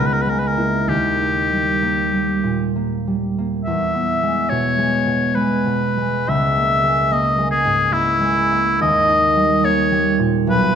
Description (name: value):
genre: classical, romantic duo for oboe and harp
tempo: 62-75 BPM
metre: 3/4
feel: rubato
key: unclear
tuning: A4 = 438 Hz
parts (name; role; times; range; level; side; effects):
- clear oboe; melody; 0.0-10.8 s; E4 to E5; -18 LUFS; left 1 dB; none
- concert harp; accompaniment; 0.0-10.8 s; B1 to E4; -19 LUFS; right 1 dB; none
room: wet recital hall reverb, RT60 1.4 s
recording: dark, warm production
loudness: -16 LUFS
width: side -8 dB against mid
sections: 0.0-10.8 A section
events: none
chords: 0.0 A#m7b5/C#; 0.9 D#; 3.7 E; 6.3 A#m7b5/C#; 8.8 D#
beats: | 0.90 1.84 2.77 | 3.67 4.52 5.37 | 6.30 7.12 7.93 | 8.82 9.65 10.50